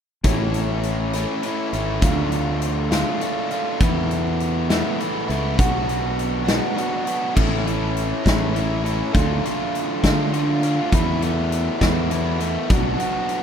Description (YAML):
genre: indie rock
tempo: 67 BPM (dotted quarters)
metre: 6/8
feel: straight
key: A major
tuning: A4 = 440 Hz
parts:
  - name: biting overdriven guitar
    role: riff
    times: 0.2-13.4 s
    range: E2 to F#4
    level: -23 LUFS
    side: equal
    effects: none
  - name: growling fingered electric bass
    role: bass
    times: 0.2-13.0 s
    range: G#1 to D3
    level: -24 LUFS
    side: equal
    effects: overdrive
  - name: big rock drum kit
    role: drums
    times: 0.2-13.4 s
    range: crash cymbal, hi-hat, kick drum, snare drum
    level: -23 LUFS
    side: equal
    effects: none
room: studio reverb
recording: rough home demo mix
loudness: -19 LUFS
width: side -8 dB against mid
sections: 0.2-7.4 A section; 7.4-13.4 B section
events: none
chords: 0.2 Amaj7; 2.0 Dm; 3.8 Esus4; 5.6 Bm; 7.4 A; 9.1 Dm; 10.9 Esus4; 12.7 Bm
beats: | 0.24 1.14 | 2.02 2.92 | 3.81 4.70 | 5.58 6.47 | 7.36 8.25 | 9.14 10.03 | 10.92 11.81 | 12.70